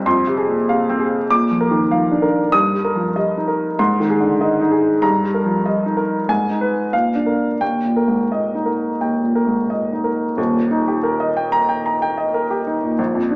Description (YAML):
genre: classical, virtuoso piano study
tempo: 85-98 BPM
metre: 4/4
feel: rubato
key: Eb major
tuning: A4 = 444 Hz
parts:
  - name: warm baby grand piano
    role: solo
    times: 0.0-13.4 s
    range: Eb1 to Eb6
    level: -15 LUFS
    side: equal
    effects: none
room: wet recital hall reverb, RT60 1.6 s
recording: small speaker sound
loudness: -15 LUFS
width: side -27 dB against mid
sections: 0.0-10.4 A section; 10.4-13.4 A section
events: none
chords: 0.1 Fm; 1.3 Bb; 2.5 Eb/G; 3.8 Ab; 5.0 Eb/G; 6.3 Abm; 6.9 Bb; 7.6 Eb